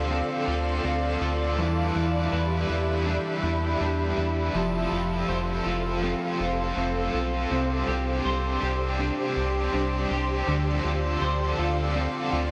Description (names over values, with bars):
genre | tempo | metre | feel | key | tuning
dream pop | 81 BPM | 4/4 | straight | unclear | A4 = 440 Hz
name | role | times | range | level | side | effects
cranked stack guitar | accompaniment | 0.0-12.5 s | C3 to B4 | -33 LUFS | equal | overdrive, tremolo, subtle chorus
granular cloud pad | sustained chords | 0.0-12.5 s | G4 to C6 | -33 LUFS | equal | built-in reverb
semi-hollow electric guitar | arpeggios | 0.0-12.5 s | D3 to C5 | -32 LUFS | equal | ensemble chorus, digital delay
round analog bass | bass | 0.0-12.5 s | F1 to E2 | -31 LUFS | equal | none
shimmering bell with halo | texture | 1.6-7.1 s | A5 | -46 LUFS | equal | none
room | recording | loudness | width
wet huge ambient reverb, RT60 8.0 s | dreamy mix soaked in reverb, nothing above 10.3 kHz | -26 LUFS | mono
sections
0.0-12.5 A section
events
none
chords
0.0 Dm7; 1.6 Em7; 4.5 F; 7.5 Csus2; 10.5 Dm7